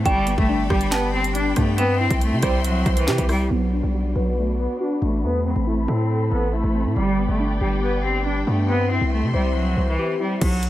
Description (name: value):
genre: hip hop, drill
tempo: 139 BPM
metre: 4/4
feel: half-time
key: unclear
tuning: A4 = 438 Hz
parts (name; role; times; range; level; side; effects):
- bright cello; melody; 0.0-10.7 s; E3 to D4; -24 LUFS; equal; low-pass filter
- warbly lo-fi synth keys; accompaniment; 0.0-10.4 s; G3 to C5; -26 LUFS; left 1 dB; chorus, low-pass filter
- warm symphonic string section; sustained chords; 0.0-10.4 s; F#4 to C6; -33 LUFS; left 3 dB; low-pass filter
- hard-hitting 808-style bass; bass; 0.0-10.7 s; G1 to C3; -23 LUFS; equal; none
- dark detuned synth bell; second line; 0.1-2.2 s; G5 to A5; -28 LUFS; right 2 dB; chorus, phaser, tape echo
- drill drum kit; drums; 0.1-3.4, 10.4-10.7 s; crash cymbal, handclaps, hi-hat, kick drum, rim click, snare drum; -22 LUFS; equal; none
room: little or no reverb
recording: none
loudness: -19 LUFS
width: side -14 dB against mid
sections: 0.0-3.5 A section; 3.5-10.4 B section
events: filter sweep 3.5-10.4; break 10.0-10.4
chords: 0.1 G; 1.8 C; 3.5 Bm; 5.2 Amadd9; 7.0 G; 8.7 C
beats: | 0.06 0.49 0.92 1.35 | 1.78 2.21 2.65 3.08 | 3.51 3.94 4.37 4.80 | 5.24 5.67 6.10 6.53 | 6.96 7.39 7.83 8.26 | 8.69 9.12 9.55 9.98 | 10.41